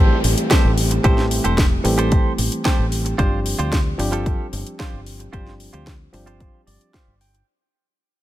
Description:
nu-disco, nu disco; 112 BPM; 4/4; straight; A4 = 441 Hz
barky reed electric piano; accompaniment; 0.0-6.9 s; E3 to G4; -24 LUFS; right 1 dB; sidechain pumping, digital delay
direct-recorded clean electric guitar; riff; 0.0-7.5 s; F4 to G5; -26 LUFS; right 4 dB; wide subtle chorus, low-pass filter, digital delay
fingered electric bass; bass; 0.0-7.4 s; E1 to D2; -22 LUFS; equal
downlifter; sound effects; 0.0-3.2 s; -32 LUFS; left 1 dB
house drum kit; drums; 0.2-7.4 s; hi-hat, snare drum; -25 LUFS; left 1 dB; overdrive
electronic kick drum; drums; 0.5-7.0 s; -17 LUFS; equal; overdrive
digital ambience; -16 LUFS; side -14 dB against mid
0.0-7.5 A section
fade-out 0.0-7.5; clean electric guitar fill 6.4-7.5
0.0 Am7; 3.2 G7sus4

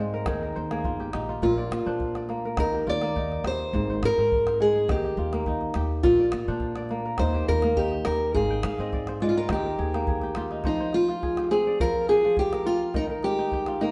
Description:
west african traditional, West African string and xylophone music; 104 BPM; 4/4; straight; A4 = 440 Hz
kora; arpeggios; 0.0-13.9 s; Ab2 to G5; -32 LUFS; equal
upright bass; bass; 0.0-10.6 s; G1 to Bb2; -34 LUFS; equal
calabash; percussion; 0.3-13.9 s; -35 LUFS; equal
fingerpicked acoustic archtop guitar; melody; 1.4-13.9 s; Eb4 to D5; -27 LUFS; equal
wet stone room reverb, RT60 1.3 s; band playing live in one room, nothing above 11.0 kHz; -25 LUFS; mono
0.0-10.6 A section; 10.6-13.9 B section
kora fill 0.0-1.4, 8.3-10.6
0.3 Eb; 1.4 Bb; 2.6 Eb; 3.7 Ab; 4.9 Eb; 6.0 Bb; 7.2 Eb; 8.3 Ab; 9.5 Eb; 10.6 Fm; 12.9 Eb

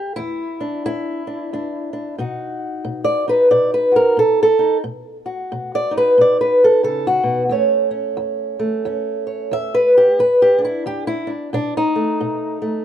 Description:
acoustic country blues, solo or duo; 90 BPM; 4/4; swing 61% on 8ths; A4 = 440 Hz
fingerpicked old ladder-braced acoustic guitar; solo; 0.0-12.8 s; E2 to E5; -16 LUFS; equal
small room ambience; dry, close 1970s-style studio recording; -15 LUFS; side -10 dB against mid
0.0-12.8 A section
steel-string acoustic guitar solo 0.0-12.8
0.0 E7(no3); 2.2 B; 7.5 A; 10.2 Em7; 11.5 B7

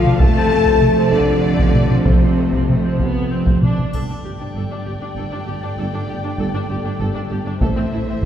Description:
cinematic, epic orchestral film score; 65 BPM (dotted quarters); 6/8; straight; A4 = 439 Hz
warm symphonic violin section; melody; 0.0-8.3 s; C5 to A5; -31 LUFS; left 4 dB
rich symphonic violin section; second line; 0.0-8.3 s; C5 to A5; -29 LUFS; left 3 dB
clear symphonic viola section; accompaniment; 0.0-8.1 s; F3 to A4; -26 LUFS; equal
dark trombone section; sustained chords; 0.0-8.3 s; C3 to A3; -28 LUFS; right 1 dB
mellow French horn section; sustained chords; 0.0-8.3 s; C4 to A4; -22 LUFS; left 3 dB
clear symphonic cello section; bass; 0.0-8.3 s; G2 to A3; -26 LUFS; right 2 dB
dark tuba; bass; 0.0-8.3 s; F1 to D2; -24 LUFS; right 2 dB
warm studio double bass section; bass; 0.0-8.3 s; G1 to F2; -25 LUFS; right 2 dB
taiko ensemble; drums; 0.1-8.3 s; -17 LUFS; equal
triangle; percussion; 3.9-5.1 s; -48 LUFS; left 2 dB
wet concert hall reverb, RT60 2.3 s; heard from further back in the room; -15 LUFS; side -9 dB against mid
0.0-3.9 A section; 3.9-8.3 B section
0.2 F; 3.9 Gsus2; 7.6 Am

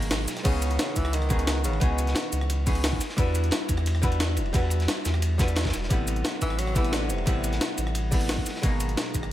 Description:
liquid drum and bass; 176 BPM; 4/4; straight; C# minor; A4 = 440 Hz
archtop guitar, miked and amplified; accompaniment; 0.0-9.3 s; B2 to B4; -31 LUFS; equal; analog delay
warm sub bass; bass; 0.0-9.3 s; E1 to E2; -27 LUFS; equal
jungle sampler-style drum kit; drums; 0.0-9.3 s; crash cymbal, hi-hat, rim click, shaker, snare drum; -30 LUFS; equal
crunchy breakbeat drum kit; drums; 0.1-9.3 s; hi-hat, ride cymbal, snare drum; -36 LUFS; equal; high-pass filter on cymbals, high-pass filter on hats, high-pass filter on snare, high-pass filter on room
clear tenor saxophone; melody; 0.5-2.5, 6.4-7.8 s; B2 to F#3; -33 LUFS; equal; tape echo
electronic kick drum; drums; 0.5-9.2 s; -26 LUFS; equal
light reverb, studio ambience; -23 LUFS; side -13 dB against mid
0.5-9.3 A section
kick drops out 0.1-0.5; drop 0.5-9.3
0.5 C#m9; 3.0 Em9; 5.9 Am9; 8.6 G#m9

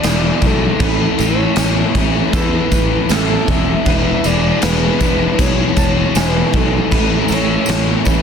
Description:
rock, shoegaze and dream pop; 78 BPM; 4/4; straight; A major; A4 = 440 Hz
breathy flute-like synth lead; melody; 0.0-8.1 s; A4 to E5; -23 LUFS; right 3 dB; chorus, analog delay
fingerpicked twelve-string acoustic guitar; arpeggios; 0.0-8.2 s; G#4 to A5; -27 LUFS; right 2 dB; wide subtle chorus, analog delay
electric guitar through a small old amp; riff; 0.0-8.2 s; E2 to E4; -23 LUFS; right 14 dB; reverse reverb
overdriven semi-hollow guitar; riff; 0.0-8.2 s; E2 to E4; -20 LUFS; left 13 dB; wide subtle chorus
fuzz fingered electric bass; bass; 0.0-8.2 s; E1 to E2; -19 LUFS; equal; overdrive
raw garage drum kit; drums; 0.0-8.2 s; crash cymbal, kick drum, snare drum; -16 LUFS; equal
tambourine; percussion; 0.0-8.2 s; -31 LUFS; right 8 dB
studio ambience; dense, heavily limited modern master; -12 LUFS; side -7 dB against mid
0.0-8.2 A section
0.0 E7; 0.8 Aadd9; 3.9 E7; 6.9 Aadd9

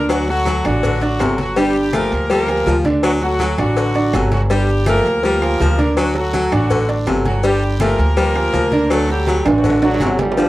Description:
latin, salsa; 164 BPM; 4/4; straight; A4 = 440 Hz
bright horn section; melody; 0.0-10.2 s; F#3 to Bb4; -21 LUFS; left 1 dB; cassette tape
bright upright piano; accompaniment; 0.0-10.5 s; D3 to D5; -20 LUFS; right 2 dB; cassette tape
upright bass; bass; 0.0-10.5 s; G1 to D2; -20 LUFS; equal
bright baritone saxophone; second line; 0.1-10.5 s; C3 to A3; -20 LUFS; left 3 dB; cassette tape
agogo bells and timbales; percussion; 0.1-10.5 s; -27 LUFS; right 5 dB
claves; percussion; 0.1-10.2 s; -34 LUFS; left 3 dB
congas; percussion; 0.1-10.5 s; -26 LUFS; equal
cowbell; percussion; 0.1-10.5 s; -26 LUFS; left 4 dB
guiro; percussion; 0.1-10.5 s; -39 LUFS; right 4 dB
maracas; percussion; 0.1-10.5 s; -40 LUFS; right 6 dB
bright trombone section; melody; 9.8-10.5 s; D3 to G3; -20 LUFS; equal; cassette tape
light reverb; home recording on cassette; -14 LUFS; side -16 dB against mid
0.0-10.4 A section
drum fill 9.5-10.4
0.1 D; 1.6 Gm7; 3.0 D; 4.5 Gm7; 6.0 D; 7.4 Gm7; 8.9 D

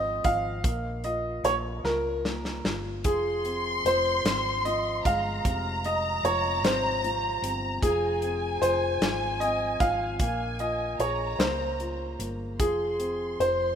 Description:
six-eight pop ballad; 50 BPM (dotted quarters); 6/8; straight; F minor; A4 = 440 Hz
clear concert grand piano; melody; 0.0-13.8 s; Ab4 to F5; -27 LUFS; equal
felt-muted upright piano; accompaniment; 0.0-13.8 s; C3 to Ab4; -36 LUFS; left 2 dB
hollow-body short-scale fingered electric bass; bass; 0.0-13.8 s; F1 to Db2; -35 LUFS; equal
modern studio drum kit; drums; 0.2-13.6 s; hi-hat, kick drum, snare drum; -30 LUFS; equal
warm studio violin section; second line; 3.0-13.8 s; Ab5 to C6; -31 LUFS; equal; tape echo
moderate lush hall reverb, RT60 2.8 s; rough home demo mix; -25 LUFS; side -8 dB against mid
0.0-13.8 A section
drum fill 1.8-3.0
0.0 Fm7; 0.6 Bbm; 3.0 Fm; 10.2 Bbm7; 12.6 Fm

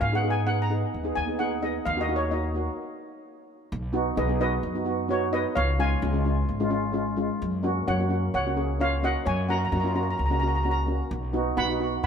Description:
calypso; 130 BPM; 4/4; straight; F# major; A4 = 440 Hz
steel pan; melody; 0.0-12.1 s; F#4 to B5; -29 LUFS; equal; tape echo
upright bass; bass; 0.0-12.1 s; G#1 to G#2; -28 LUFS; equal
steel pan; accompaniment; 0.1-12.0 s; G#3 to G#4; -28 LUFS; equal
moderate plate reverb, RT60 3.2 s; heard from further back in the room; -24 LUFS; side -7 dB against mid
0.0-3.7 A section; 3.7-12.1 B section
steel pan solo 0.0-3.7; stop 2.8-3.7
0.0 G#m; 1.9 D#m; 3.7 B; 5.6 C#; 7.4 F#; 11.1 B

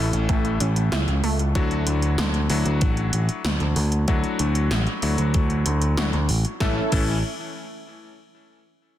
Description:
synthwave; 95 BPM; 4/4; straight; A major; A4 = 441 Hz
wide unison pluck; arpeggios; 0.0-1.4 s; A3 to E4; -30 LUFS; right 3 dB; cassette tape, digital delay
bright electric grand piano; stabs; 0.0-7.2 s; A2 to A4; -28 LUFS; left 4 dB; low-pass filter, digital delay
picked electric bass; bass; 0.0-7.2 s; A1 to D2; -22 LUFS; equal; low-pass filter
80s electronic pad drums; drums; 0.1-7.0 s; crash cymbal, hi-hat, snare drum; -29 LUFS; equal
electronic kick drum; drums; 0.3-7.0 s; -23 LUFS; equal; overdrive
soft supersaw; sustained chords; 6.6-6.9 s; C#4 to E5; -30 LUFS; right 2 dB; sidechain pumping
light reverb; dense, heavily limited modern master; -20 LUFS; side -12 dB against mid
0.0-6.6 A section; 6.6-9.0 B section
0.0 A; 1.6 Dadd9; 6.6 A

